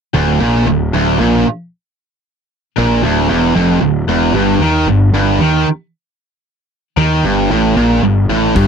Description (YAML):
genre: heavy metal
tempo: 114 BPM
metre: 4/4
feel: straight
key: D phrygian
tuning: A4 = 441 Hz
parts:
  - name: high-gain distorted guitar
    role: riff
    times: 0.1-8.7 s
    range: D2 to Eb3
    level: -16 LUFS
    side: left 12 dB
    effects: distortion
  - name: tight distorted guitar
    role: riff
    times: 0.1-8.7 s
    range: D2 to Eb3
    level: -14 LUFS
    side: right 9 dB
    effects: distortion
  - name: fuzz picked electric bass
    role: bass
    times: 0.1-8.7 s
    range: D1 to Eb2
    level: -17 LUFS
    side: left 2 dB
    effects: overdrive
  - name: overdriven semi-hollow guitar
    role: riff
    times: 8.6-8.7 s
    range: G2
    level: -11 LUFS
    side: left 2 dB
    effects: none
  - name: big rock drum kit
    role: drums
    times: 8.6-8.7 s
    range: hi-hat, kick drum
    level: -16 LUFS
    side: left 1 dB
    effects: none
room: little or no reverb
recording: dry, close 1970s-style studio recording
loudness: -11 LUFS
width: side -6 dB against mid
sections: 0.1-8.7 A section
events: none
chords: 0.1 Dm; 4.3 G5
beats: | 0.14 0.67 1.19 1.72 | 2.25 2.77 3.30 3.82 | 4.35 4.88 5.40 5.93 | 6.46 6.98 7.51 8.03 | 8.56